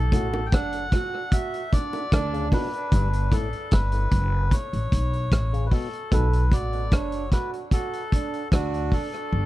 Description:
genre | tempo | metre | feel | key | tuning
dub reggae | 75 BPM | 4/4 | straight | unclear | A4 = 437 Hz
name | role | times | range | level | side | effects
melodica | melody | 0.0-9.5 s | F#4 to G5 | -31 LUFS | left 2 dB | dub echo
bright trombone | second line | 0.0-9.1 s | D4 to A4 | -32 LUFS | right 7 dB | dub echo
upright bass | bass | 0.0-9.5 s | F#1 to D2 | -25 LUFS | equal | none
auto-wah clav | arpeggios | 0.1-6.3 s | G2 to C#3 | -37 LUFS | left 6 dB | dub echo
vintage drum kit | drums | 0.1-9.3 s | hi-hat, kick drum, rim click | -22 LUFS | equal | none
bongos | percussion | 0.1-3.5 s | none | -37 LUFS | right 2 dB | dub echo
room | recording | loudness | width
little or no reverb | dry, close 1970s-style studio recording | -22 LUFS | side -16 dB against mid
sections
0.0-9.5 A section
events
part muted 2.9-9.5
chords
0.0 N.C.; 1.3 Dmaj7sus2; 2.9 Gmaj7; 4.5 A; 6.1 B5; 7.7 D5

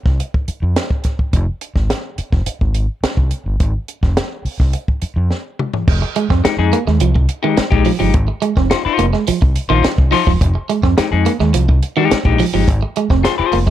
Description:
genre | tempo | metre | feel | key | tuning
funk | 106 BPM | 4/4 | straight | F minor | A4 = 444 Hz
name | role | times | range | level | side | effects
overdriven fingered electric bass | bass | 0.1-13.6 s | E1 to F2 | -16 LUFS | equal | none
compact cocktail drum kit | drums | 0.1-13.7 s | crash cymbal, hi-hat, kick drum, snare drum, toms | -17 LUFS | equal | none
clean electric guitar | riff | 6.0-13.7 s | Eb3 to C4 | -18 LUFS | right 8 dB | none
semi-hollow electric guitar | accompaniment | 6.4-13.6 s | Ab3 to C5 | -17 LUFS | left 11 dB | tremolo
room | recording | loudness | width
small room ambience | none | -14 LUFS | side -12 dB against mid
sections
0.0-5.9 A section; 5.9-13.7 B section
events
drum fill 5.3-5.9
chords
0.0 Ab6 (rootless); 1.3 Fmadd9; 3.6 Ab6; 5.9 Fm9; 8.1 Ab6; 10.4 Fm9; 12.7 Ab6

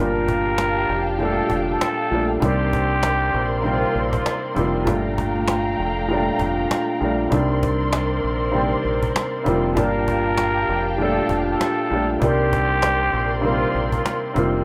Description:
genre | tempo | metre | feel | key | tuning
hip hop, boom-bap hip-hop | 98 BPM | 4/4 | swing 58% on 16ths | G minor | A4 = 439 Hz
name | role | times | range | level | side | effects
trumpet with plunger mute | melody | 0.0-4.4, 9.8-14.2 s | F4 to Bb4 | -26 LUFS | equal | high-pass filter, low-pass filter, plate reverb, digital delay
warm upright piano | accompaniment | 0.0-14.6 s | Bb2 to F4 | -25 LUFS | equal | cassette tape, high-pass filter, low-pass filter
warm studio string section | sustained chords | 0.0-14.6 s | A3 to C6 | -28 LUFS | equal | high-pass filter, low-pass filter, plate reverb
deep dub fingered electric bass | bass | 0.0-14.6 s | F1 to C2 | -28 LUFS | equal | none
cajon | drums | 0.3-14.5 s | none | -28 LUFS | equal | none
finger snap | percussion | 0.6-14.2 s | none | -38 LUFS | equal | none
room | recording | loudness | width
moderate small room reverb, RT60 0.5 s | rough home demo mix | -21 LUFS | mono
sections
0.0-14.6 A section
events
none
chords
0.0 Gm9; 2.4 Cm9; 4.9 Gm9; 7.3 Cm9; 9.8 Gm9; 12.2 Cm9

